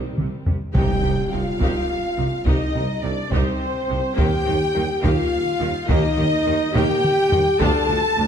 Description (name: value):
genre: cinematic, epic orchestral film score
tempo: 70 BPM (dotted quarters)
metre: 6/8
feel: straight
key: C dorian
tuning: A4 = 440 Hz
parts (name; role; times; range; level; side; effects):
- rich symphonic violin section; second line; 0.0-8.3 s; G3 to A5; -30 LUFS; equal; none
- rich symphonic viola section; accompaniment; 0.0-8.3 s; C3 to G4; -30 LUFS; equal; none
- clear studio double bass section; bass; 0.2-8.3 s; C2 to Eb2; -27 LUFS; right 2 dB; none
- rich symphonic cello section; bass; 0.2-8.2 s; C3 to Eb3; -29 LUFS; right 2 dB; none
- warm tuba; bass; 0.2-8.3 s; C2 to Eb2; -30 LUFS; right 4 dB; none
- solo taiko drums; drums; 0.2-8.1 s; none; -24 LUFS; equal; none
- rich studio violin section; melody; 0.7-8.3 s; C5 to A5; -30 LUFS; left 5 dB; none
- mellow small flute group; second line; 0.7-8.2 s; C5 to A5; -30 LUFS; right 4 dB; none
- dark French horn section; sustained chords; 0.7-8.3 s; C4 to A4; -23 LUFS; left 2 dB; none
- timpani; percussion; 0.7-1.6 s; C3; -27 LUFS; right 1 dB; none
- impact; sound effects; 0.7-2.5 s; none; -30 LUFS; equal; none
room: wet recital hall reverb, RT60 1.7 s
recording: dark, warm production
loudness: -18 LUFS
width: side -8 dB against mid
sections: 0.8-8.3 A section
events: drum fill 0.0-0.8, 6.8-7.6; impact 0.8-2.5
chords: 0.0 Cm; 4.2 Eb; 7.6 Dm